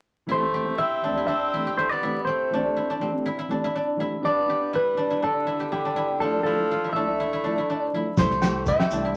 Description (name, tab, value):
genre	highlife guitar band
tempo	122 BPM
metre	4/4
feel	straight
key	C major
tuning	A4 = 440 Hz
part	clean electric guitar	melody	0.3-9.1 s	G4 to E5	-28 LUFS	equal	phaser
part	raspy tenor saxophone	second line	0.3-9.1 s	D3 to C4	-34 LUFS	equal	none
part	mellow electric guitar	accompaniment	0.3-9.2 s	E3 to G4	-35 LUFS	equal	tremolo
part	guzheng	arpeggios	0.3-9.2 s	C4 to G4	-30 LUFS	equal	none
part	fingered electric bass	bass	8.2-9.2 s	C2	-34 LUFS	equal	none
part	cloth-damped thuddy drum kit	drums	8.2-8.9 s	kick drum, snare drum	-26 LUFS	equal	none
part	shekere	percussion	8.2-9.0 s	none	-37 LUFS	equal	none
part	agogo bells	percussion	8.4-8.9 s	none	-34 LUFS	equal	none
room	wet studio reverb, RT60 0.6 s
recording	vinyl crackle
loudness	-25 LUFS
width	mono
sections	0.3-9.2 A section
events	none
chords	0.3 C6; 4.2 G; 6.2 Dmadd9; 8.2 C6